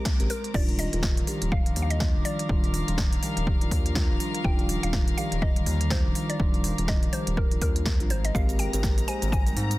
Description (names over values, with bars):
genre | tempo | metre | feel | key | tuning
deep house | 123 BPM | 4/4 | swing 59% on 16ths | Eb major | A4 = 439 Hz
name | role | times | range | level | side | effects
mallet-like synth pluck | melody | 0.0-9.8 s | Bb4 to Ab5 | -36 LUFS | left 1 dB | chorus, digital delay
warbly tape-like pad | sustained chords | 0.0-9.8 s | F3 to D6 | -39 LUFS | right 2 dB | chorus, built-in reverb, sidechain pumping
mellow tine electric piano | stabs | 0.0-9.8 s | D3 to C5 | -32 LUFS | equal | phaser, sidechain pumping
rich chamber string section | texture | 0.0-9.8 s | Eb3 to Bb5 | -37 LUFS | left 3 dB | sidechain pumping
string machine, violins | texture | 0.0-0.6, 8.3-9.8 s | Bb5 to D6 | -45 LUFS | equal | ensemble chorus, sidechain pumping
deep house drum kit | drums | 0.1-9.8 s | crash cymbal, hi-hat, shaker, snare drum | -33 LUFS | right 1 dB | none
electronic kick drum | drums | 0.1-9.4 s | none | -25 LUFS | equal | overdrive
round analog bass | bass | 0.2-9.8 s | Eb1 to Ab2 | -28 LUFS | equal | tube saturation, sidechain pumping
room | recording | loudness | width
digital ambience | dense, heavily limited modern master | -23 LUFS | side -18 dB against mid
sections
0.5-9.8 A section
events
band accent 0.1; drop 0.5-9.8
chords
0.0 Abmaj9; 0.5 Ebmaj9; 8.1 Abmaj9